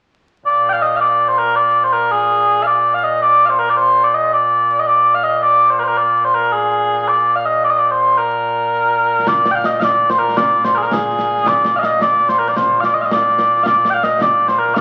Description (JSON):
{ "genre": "scottish traditional, Scottish pipe music", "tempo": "109 BPM (dotted quarters)", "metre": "6/8", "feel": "straight", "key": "Bb mixolydian", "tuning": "A4 = 440 Hz", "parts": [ { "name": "mellow small bagpipes", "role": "melody", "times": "0.5-14.8 s", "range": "Bb2 to G5", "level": "-15 LUFS", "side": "equal", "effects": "none" }, { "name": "concert snare drum and concert bass drum", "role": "drums", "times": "9.3-14.8 s", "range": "none", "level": "-27 LUFS", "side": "equal", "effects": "none" } ], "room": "wet large studio reverb, RT60 1.4 s", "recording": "very old 78 rpm record, vinyl crackle", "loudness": "-15 LUFS", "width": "mono", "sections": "0.5-9.3 A section; 9.3-14.8 A section", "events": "none", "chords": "none", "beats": "| 0.46 1.01 | 1.56 2.11 | 2.66 3.21 | 3.76 4.31 | 4.86 5.41 | 5.96 6.51 | 7.07 7.62 | 8.17 8.72 | 9.27 9.82 | 10.37 10.92 | 11.47 12.02 | 12.57 13.12 | 13.67 14.22 | 14.77" }